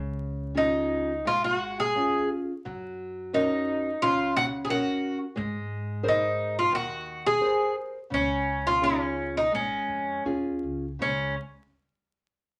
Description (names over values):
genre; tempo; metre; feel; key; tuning
fado-style ballad; 87 BPM; 4/4; rubato; Db major; A4 = 440 Hz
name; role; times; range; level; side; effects
nylon-string guitar; accompaniment; 0.0-11.3 s; Db3 to C5; -34 LUFS; equal; none
upright bass; bass; 0.0-11.3 s; Ab1 to Ab2; -40 LUFS; equal; none
Irish bouzouki; melody; 0.6-11.3 s; Db4 to Ab4; -28 LUFS; equal; none
room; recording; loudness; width
wet small room reverb, RT60 0.6 s; vinyl crackle; -27 LUFS; mono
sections
0.0-11.0 A section; 11.0-12.6 B section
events
none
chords
0.0 Db; 2.7 Gb; 5.4 Abadd9; 8.1 Db; 11.0 Db5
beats
0.57 1.26 1.96 | 2.66 3.35 4.03 4.71 | 5.38 6.06 6.74 7.43 | 8.12 8.82 9.53 10.26 | 11.00